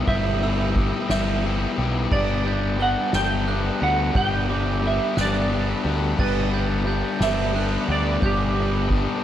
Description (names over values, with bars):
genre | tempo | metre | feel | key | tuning
post-rock | 59 BPM (dotted quarters) | 6/8 | straight | G major | A4 = 440 Hz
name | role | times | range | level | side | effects
clean electric guitar | melody | 0.0-9.2 s | G4 to G5 | -27 LUFS | right 3 dB | analog chorus, tape echo
analog string pad | sustained chords | 0.0-9.2 s | G4 to B5 | -38 LUFS | equal | none
glockenspiel with hard plastic mallets | arpeggios | 0.0-9.2 s | D6 to G7 | -34 LUFS | right 6 dB | tape echo
fuzz guitar | riff | 0.0-9.2 s | G3 to G4 | -25 LUFS | left 6 dB | distortion
growling picked electric bass | bass | 0.1-9.1 s | G1 to D2 | -25 LUFS | equal | overdrive
soft-mallet drum kit | drums | 0.1-9.1 s | crash cymbal, kick drum, ride cymbal, snare drum | -27 LUFS | right 2 dB | none
room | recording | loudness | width
small room ambience | dark, warm production | -20 LUFS | side -11 dB against mid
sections
0.0-9.2 A section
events
none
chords
0.0 Em/G; 2.1 G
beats
| 0.08 1.10 | 2.12 3.14 | 4.16 5.17 | 6.19 7.21 | 8.23